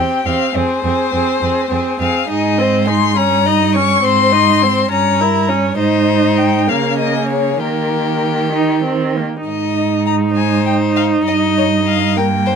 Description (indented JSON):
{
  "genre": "quick classical-period movement for string quartet",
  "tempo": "67 BPM (dotted quarters)",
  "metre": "6/8",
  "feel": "rubato",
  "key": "Ab major",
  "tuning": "A4 = 440 Hz",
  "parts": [
    { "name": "rich violin", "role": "melody", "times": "0.0-12.6 s", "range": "Bb4 to Db6", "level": "-18 LUFS", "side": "left 10 dB", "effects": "none" },
    { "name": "rich violin", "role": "second line", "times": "0.0-12.5 s", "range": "G4 to Eb5", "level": "-21 LUFS", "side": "left 4 dB", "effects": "none" },
    { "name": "rich viola", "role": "accompaniment", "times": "0.0-12.6 s", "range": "Bb3 to E4", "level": "-17 LUFS", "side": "right 3 dB", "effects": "none" },
    { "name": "warm cello", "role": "bass", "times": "0.0-12.6 s", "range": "E2 to Eb3", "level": "-18 LUFS", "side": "right 4 dB", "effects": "none" }
  ],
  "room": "light reverb",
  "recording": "none",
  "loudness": "-13 LUFS",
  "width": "side -6 dB against mid",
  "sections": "0.0-9.5 A section; 9.5-12.6 B section",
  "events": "none",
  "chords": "0.0 C; 0.6 Fm; 2.3 Ab; 3.2 Eb7/G; 4.0 Ab; 4.9 Gdim7; 5.8 Ab; 6.7 Bbm/Db; 7.6 Eb; 9.5 Ab; 11.3 Eb/G"
}